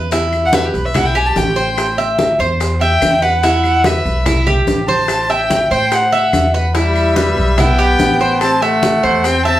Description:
latin, Cuban son and guajira; 145 BPM; 4/4; straight; E minor; A4 = 442 Hz
Cuban tres; arpeggios; 0.0-9.6 s; E4 to E5; -17 LUFS; right 1 dB
upright bass; bass; 0.0-9.6 s; A1 to A2; -19 LUFS; equal
bongos; percussion; 0.1-9.6 s; -23 LUFS; left 2 dB
congas; percussion; 0.1-9.6 s; -22 LUFS; left 1 dB
maracas; percussion; 0.1-9.6 s; -31 LUFS; left 2 dB
claves; percussion; 0.3-9.5 s; -29 LUFS; left 4 dB
warm violin; melody; 0.5-9.6 s; G4 to A5; -17 LUFS; equal
bright trumpet; second line; 6.8-9.6 s; G3 to C4; -18 LUFS; left 2 dB
wet studio reverb, RT60 0.6 s; heard from further back in the room; -12 LUFS; side -13 dB against mid
0.0-6.8 A section; 6.8-9.6 B section
violin solo 0.0-6.8
0.1 Em; 1.8 Am; 3.4 Em; 5.1 Am; 6.8 Em; 8.4 Am

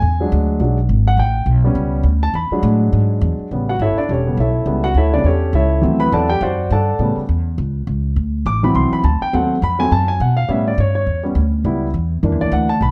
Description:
jazz, big band swing; 206 BPM; 4/4; swing 59% on 8ths; A mixolydian; A4 = 439 Hz
warm concert grand piano; accompaniment; 0.0-12.9 s; C#3 to D6; -21 LUFS; equal
upright bass; bass; 0.0-12.9 s; E1 to B2; -19 LUFS; equal
light reverb; dark, warm production; -17 LUFS; mono
0.0-3.5 A section; 3.5-12.9 A section
grand piano solo 0.0-3.5, 3.5-12.9
0.0 E7; 1.2 A7; 2.3 E7; 3.5 A7; 5.8 D7; 7.0 A7; 8.2 D7; 9.3 D#dim7; 10.5 A7; 11.7 C#m7b5; 12.2 F#aug7

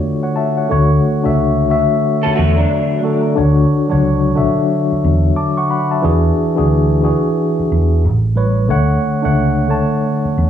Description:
R&B; 90 BPM; 4/4; swing 62% on 16ths; D major; A4 = 440 Hz
mellow tine electric piano; accompaniment; 0.0-10.5 s; A2 to D6; -14 LUFS; left 1 dB; medium stereo tremolo, plate reverb
vintage muted fingered electric bass; bass; 0.7-10.5 s; A1 to E2; -15 LUFS; equal
electric guitar through a small old amp; second line; 2.2-3.3 s; F#3 to A4; -20 LUFS; right 6 dB; ensemble chorus, plate reverb
moderate studio reverb, RT60 0.5 s; studio reverb; -12 LUFS; side -9 dB against mid
0.0-3.4 A section; 3.4-10.5 A section
0.0 Dmaj7; 0.7 Dmaj9/C#; 3.4 Dmaj7; 6.0 E9; 8.0 A9; 8.7 Bm9 (rootless)

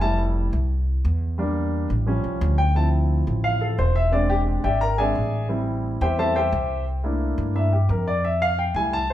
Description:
Afro-Cuban jazz; 175 BPM; 4/4; straight; F major; A4 = 440 Hz
warm grand piano; accompaniment; 0.0-9.1 s; E#3 to Bb5; -23 LUFS; left 1 dB
upright bass; bass; 0.0-9.1 s; E1 to G2; -22 LUFS; equal
moderate large studio reverb, RT60 1.1 s; heard from further back in the room; -20 LUFS; side -12 dB against mid
0.0-2.8 A section; 2.8-9.1 A section
grand piano solo 0.0-9.1
0.0 Fmaj9; 1.4 Em7b5; 2.1 A7alt; 2.8 Dm9; 4.1 E7alt; 5.5 Am7; 6.9 C13; 8.2 Fmaj9

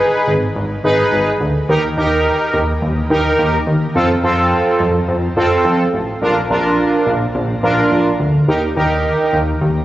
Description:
synth-pop; 106 BPM; 4/4; straight; Eb major; A4 = 440 Hz
analog synth brass; accompaniment; 0.0-9.4 s; C4 to Cb5; -15 LUFS; right 1 dB; chorus, shimmer reverb
chorused synth bass; bass; 0.3-9.8 s; Ab1 to F2; -18 LUFS; equal
moderate lush hall reverb, RT60 2.2 s; recorded on a phone in the room, club reverb, compression, nothing above 7.9 kHz; -13 LUFS; side -14 dB against mid
0.0-9.8 A section
0.0 Abm; 1.7 Eb; 4.0 F; 6.2 Bb; 8.5 Eb

